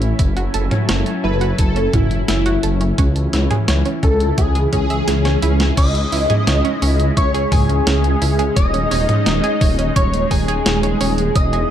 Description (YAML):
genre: synthwave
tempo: 86 BPM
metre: 4/4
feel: straight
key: C# minor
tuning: A4 = 439 Hz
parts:
  - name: lush unison pad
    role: sustained chords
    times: 0.0-11.7 s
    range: E3 to G#5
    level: -24 LUFS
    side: equal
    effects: chorus, sidechain pumping
  - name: dark detuned saw bass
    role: bass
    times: 0.0-11.6 s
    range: D#1 to C#2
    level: -18 LUFS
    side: equal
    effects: tube saturation
  - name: clean 12-bit digital drum machine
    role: drums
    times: 0.0-11.7 s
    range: crash cymbal, hi-hat, snare drum, toms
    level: -22 LUFS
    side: right 1 dB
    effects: none
  - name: analog pluck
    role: arpeggios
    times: 0.2-11.7 s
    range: C#4 to E5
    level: -26 LUFS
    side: right 4 dB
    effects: chorus, digital delay
  - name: electronic kick drum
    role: drums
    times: 0.2-11.5 s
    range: none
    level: -17 LUFS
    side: equal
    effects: none
  - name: wide unison lead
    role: melody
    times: 1.2-11.7 s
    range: E4 to D#5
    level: -22 LUFS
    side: left 1 dB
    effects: ensemble chorus, ping-pong delay
  - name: swell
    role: sound effects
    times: 4.7-5.8 s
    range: none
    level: -30 LUFS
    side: right 3 dB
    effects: none
  - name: soft synth bell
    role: second line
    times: 5.8-11.7 s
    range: G#5 to D#6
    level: -27 LUFS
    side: left 2 dB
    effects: chorus, vintage 12-bit sampler grit, digital delay
room: little or no reverb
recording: dark, warm production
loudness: -14 LUFS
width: side -10 dB against mid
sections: 0.0-5.8 A section; 5.8-11.7 B section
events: swell 4.7-5.8; drum fill 5.1-5.8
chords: 0.2 F#m7; 3.0 C#m; 8.6 G#sus4/D#